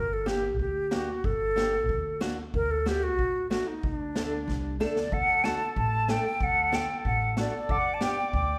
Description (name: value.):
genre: klezmer.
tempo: 93 BPM.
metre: 2/4.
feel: straight.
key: D major.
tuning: A4 = 441 Hz.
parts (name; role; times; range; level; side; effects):
mellow hollow silver concert flute; melody; 0.0-8.6 s; D4 to A5; -30 LUFS; equal; none.
upright bass; bass; 0.0-8.6 s; G1 to D2; -36 LUFS; equal; none.
flamenco guitar; accompaniment; 0.3-8.2 s; A3 to A4; -36 LUFS; equal; none.
street-band drum kit; drums; 0.3-8.5 s; kick drum, snare drum; -36 LUFS; equal; none.
mellow accordion; second line; 5.1-8.6 s; A4 to D5; -36 LUFS; equal; none.
room: moderate recital hall reverb, RT60 1.5 s.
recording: recorded in a church or concert hall.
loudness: -28 LUFS.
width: mono.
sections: 0.0-5.1 A section; 5.1-8.6 B section.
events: drum fill 4.5-5.1.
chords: 0.0 Gm; 2.5 D; 7.7 G.